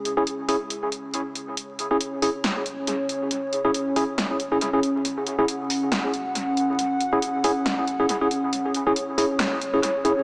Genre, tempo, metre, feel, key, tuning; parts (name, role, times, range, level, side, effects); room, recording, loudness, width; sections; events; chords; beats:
deep dubstep; 138 BPM; 4/4; swing 55% on 16ths, half-time; C# minor; A4 = 438 Hz
dark analog pad; sustained chords; 0.0-10.2 s; C#4 to F#5; -29 LUFS; equal; chorus
deep house drum kit; drums; 0.1-10.1 s; handclaps, hi-hat, snare drum; -30 LUFS; equal; overdrive, analog delay
tine electric piano; stabs; 0.2-10.1 s; C#4 to G#4; -27 LUFS; equal; medium tremolo, dub echo
moderate echo chamber reverb, RT60 2.2 s; echo-heavy mix, vinyl crackle, small speaker sound; -25 LUFS; mono
0.0-1.6 A section; 1.6-10.2 B section
build-up 1.6-10.2
0.0 C#5; 1.6 N.C.
0.27 0.70 1.14 | 1.57 2.01 2.44 2.88 | 3.31 3.75 4.18 4.62 | 5.05 5.49 5.92 6.35 | 6.79 7.22 7.66 8.09 | 8.53 8.96 9.40 9.83